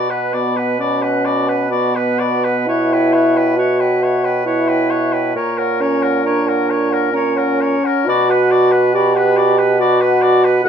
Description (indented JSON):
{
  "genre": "classical, slow romantic movement for wind quintet",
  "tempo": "68 BPM",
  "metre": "3/4",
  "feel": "uneven beats, rubato",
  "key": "B minor",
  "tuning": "A4 = 440 Hz",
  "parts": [
    { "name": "mellow hollow silver concert flute", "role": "melody", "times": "0.0-10.7 s", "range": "D#5 to B5", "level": "-22 LUFS", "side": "left 4 dB", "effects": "none" },
    { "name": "clear oboe", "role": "second line", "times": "0.0-10.7 s", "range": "A#4 to F#5", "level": "-22 LUFS", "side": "left 4 dB", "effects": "none" },
    { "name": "bright clarinet", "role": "accompaniment", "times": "0.0-10.7 s", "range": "F#4 to C#5", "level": "-24 LUFS", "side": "right 8 dB", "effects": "none" },
    { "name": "mellow bassoon", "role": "bass", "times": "0.0-10.7 s", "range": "D#2 to B2", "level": "-19 LUFS", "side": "right 2 dB", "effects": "none" },
    { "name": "warm French horn", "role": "accompaniment", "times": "0.3-10.7 s", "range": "B3 to G4", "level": "-17 LUFS", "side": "equal", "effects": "none" }
  ],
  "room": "light reverb",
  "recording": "minimal, uncompressed stereo recording",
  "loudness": "-13 LUFS",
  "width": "side -8 dB against mid",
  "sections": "0.0-10.7 A section",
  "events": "none",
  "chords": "0.0 Bm; 2.7 C#m7b5/B; 5.4 F#/A#; 8.1 Bm",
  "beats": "0.79 1.70 | 2.68 3.58 4.47 | 5.36 6.26 7.14 | 8.08 8.94 9.80 | 10.65"
}